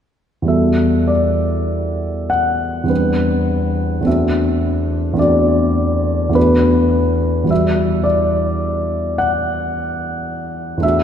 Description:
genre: classical, impressionist solo piano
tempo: 48-56 BPM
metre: 3/4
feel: rubato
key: E minor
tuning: A4 = 439 Hz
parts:
  - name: warm concert grand piano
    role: solo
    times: 0.4-11.0 s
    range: E2 to F#5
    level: -14 LUFS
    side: equal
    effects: none
room: wet church reverb, RT60 3.1 s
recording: recorded in a church or concert hall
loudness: -14 LUFS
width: side -8 dB against mid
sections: 0.5-11.0 A section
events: none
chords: 0.5 Em11; 2.9 Cmaj9/E; 4.1 D9/E; 6.4 Bm7/E; 7.5 Emadd9

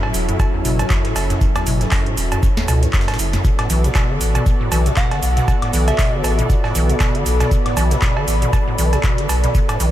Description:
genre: acid house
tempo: 118 BPM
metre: 4/4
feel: swing 56% on 16ths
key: unclear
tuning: A4 = 436 Hz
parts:
  - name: warm analog pad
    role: sustained chords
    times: 0.0-9.9 s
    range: F#3 to D5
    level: -25 LUFS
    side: equal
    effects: chorus, tremolo, sidechain pumping
  - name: deep acid bass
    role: riff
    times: 0.0-9.9 s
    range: E2 to E3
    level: -22 LUFS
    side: equal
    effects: overdrive, wide subtle chorus, sidechain pumping, analog delay
  - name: booming analog drum machine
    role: drums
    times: 0.0-9.9 s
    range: cowbell, handclaps, hi-hat, shaker, snare drum, woodblock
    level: -24 LUFS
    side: right 2 dB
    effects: overdrive
  - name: warbly tape-like pad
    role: texture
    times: 0.0-9.9 s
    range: F#4 to B5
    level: -28 LUFS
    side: left 1 dB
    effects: chorus, built-in reverb, sidechain pumping
  - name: saturated sub bass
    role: bass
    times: 0.1-9.9 s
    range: E1 to C#2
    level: -18 LUFS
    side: equal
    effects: sidechain pumping
  - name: breakbeat sampler-style drum kit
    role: drums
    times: 0.1-9.9 s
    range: hi-hat, snare drum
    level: -34 LUFS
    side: equal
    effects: none
  - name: electronic kick drum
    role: drums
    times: 0.4-9.7 s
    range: none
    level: -18 LUFS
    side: equal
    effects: overdrive
  - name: soft synth bell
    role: melody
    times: 5.0-6.2 s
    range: E5 to F#5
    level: -26 LUFS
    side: right 1 dB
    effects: chorus, ping-pong delay
room: light reverb, digital ambience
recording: none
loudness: -15 LUFS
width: side -13 dB against mid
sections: 0.0-9.9 A section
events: none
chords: 0.0 F#m7; 3.4 Bm7

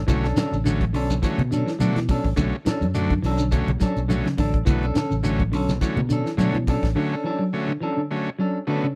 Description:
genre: afrobeat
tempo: 105 BPM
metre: 4/4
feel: swing 54% on 16ths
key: B minor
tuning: A4 = 439 Hz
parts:
  - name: fingered electric bass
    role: bass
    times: 0.0-6.9 s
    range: A1 to B2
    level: -27 LUFS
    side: equal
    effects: none
  - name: overdriven combo organ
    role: accompaniment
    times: 0.1-8.9 s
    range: D3 to D4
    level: -28 LUFS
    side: equal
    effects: none
  - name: clean electric guitar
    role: arpeggios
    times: 0.1-8.9 s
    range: C#3 to F#3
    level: -30 LUFS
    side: equal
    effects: subtle chorus
  - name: tight funk drum kit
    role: drums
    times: 0.1-7.0 s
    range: hi-hat, kick drum, snare drum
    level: -27 LUFS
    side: equal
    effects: none
  - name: congas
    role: percussion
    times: 0.1-6.8 s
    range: none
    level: -32 LUFS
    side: equal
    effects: none
  - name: shekere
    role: percussion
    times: 0.1-6.8 s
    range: none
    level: -34 LUFS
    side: equal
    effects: none
  - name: clean electric guitar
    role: stabs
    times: 0.2-8.9 s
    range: F#3 to A4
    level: -30 LUFS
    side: equal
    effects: none
room: small room ambience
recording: dry, close 1970s-style studio recording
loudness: -23 LUFS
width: mono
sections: 0.0-9.0 A section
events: break 7.0-9.0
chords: 0.0 Bm9

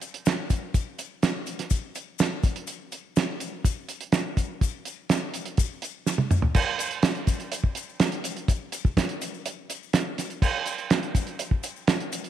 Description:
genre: rock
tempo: 124 BPM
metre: 4/4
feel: straight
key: none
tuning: none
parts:
  - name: cloth-damped thuddy drum kit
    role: drums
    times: 0.0-12.3 s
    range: crash cymbal, hi-hat, kick drum, snare drum, toms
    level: -24 LUFS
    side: right 1 dB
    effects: none
  - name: maracas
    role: percussion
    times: 0.0-12.3 s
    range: none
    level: -38 LUFS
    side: left 18 dB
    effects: none
room: moderate plate reverb, RT60 1.7 s, small room ambience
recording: 1960s-style stereo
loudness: -24 LUFS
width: side -11 dB against mid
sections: 0.0-6.6 A section; 6.6-12.3 B section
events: drum fill 6.1-6.6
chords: none

